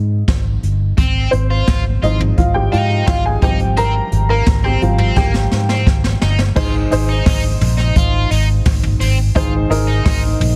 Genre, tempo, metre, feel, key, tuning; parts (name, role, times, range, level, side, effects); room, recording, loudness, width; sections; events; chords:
piano-driven pop; 86 BPM; 4/4; straight; Ab major; A4 = 440 Hz
dark upright piano; accompaniment; 0.0-10.6 s; Ab2 to Bb5; -22 LUFS; equal
vintage muted fingered electric bass; bass; 0.0-10.6 s; G1 to Ab2; -19 LUFS; equal
jazz brush drum kit; drums; 0.3-10.6 s; crash cymbal, hi-hat, kick drum, snare drum, toms; -20 LUFS; equal
overdriven electric guitar; riff; 1.0-10.2 s; Bb3 to F4; -26 LUFS; equal
small room ambience; dense, heavily limited modern master; -15 LUFS; mono
0.0-6.6 A section; 6.6-10.6 B section
upright piano solo 0.0-6.6; drum fill 5.2-6.6
0.0 Ab; 1.0 Fm/Ab; 3.4 Eb6/Ab (rootless); 6.6 Ab